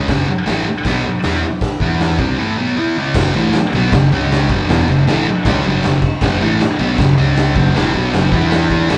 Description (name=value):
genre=garage rock duo or trio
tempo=157 BPM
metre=4/4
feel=straight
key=unclear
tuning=A4 = 440 Hz
part: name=thick fuzz guitar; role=riff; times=0.0-9.0 s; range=E2 to E4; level=-17 LUFS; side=equal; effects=distortion
part: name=fuzz fingered electric bass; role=bass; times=0.0-9.0 s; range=E1 to E2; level=-25 LUFS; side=equal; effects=overdrive
part: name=raw garage drum kit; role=drums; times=0.1-9.0 s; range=crash cymbal, hi-hat, kick drum, ride cymbal, snare drum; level=-20 LUFS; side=equal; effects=none
room=wet large studio reverb, RT60 1.5 s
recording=band playing live in one room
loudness=-15 LUFS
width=mono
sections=0.0-3.2 A section; 3.2-9.0 B section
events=none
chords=0.0 F#5; 1.8 E5; 2.2 F#5; 4.1 C#5; 4.5 F#5; 7.2 C#5; 7.6 F#5; 8.3 E5